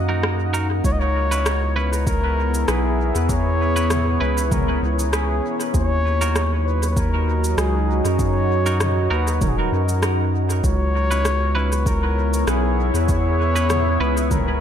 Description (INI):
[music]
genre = ambient dub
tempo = 98 BPM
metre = 4/4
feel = swing 54% on 16ths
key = C# dorian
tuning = A4 = 440 Hz
[part]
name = deep dark ambient pad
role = sustained chords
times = 0.0-14.6 s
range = F#3 to F#5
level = -24 LUFS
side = equal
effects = chorus, built-in reverb
[part]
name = round analog bass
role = bass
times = 0.0-14.6 s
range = D#1 to F#2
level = -21 LUFS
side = equal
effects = tube saturation
[part]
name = semi-hollow electric guitar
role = stabs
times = 0.1-14.2 s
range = C#4 to B4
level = -30 LUFS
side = right 3 dB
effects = dub echo
[part]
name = organic electronic drum kit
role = drums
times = 0.2-14.4 s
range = cabasa, rim click, toms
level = -29 LUFS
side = equal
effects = dub echo
[part]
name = trumpet with bucket mute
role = melody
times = 0.8-14.6 s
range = G#4 to D#5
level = -25 LUFS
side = left 1 dB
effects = dub echo
[part]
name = electronic kick drum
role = drums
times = 0.8-14.4 s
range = none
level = -23 LUFS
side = equal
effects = overdrive
[sound]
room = light reverb, digital ambience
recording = echo-heavy mix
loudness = -18 LUFS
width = side -9 dB against mid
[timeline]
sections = 0.8-14.6 A section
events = none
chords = 0.0 D#m; 0.8 C#m7; 5.7 D#m; 10.6 C#m7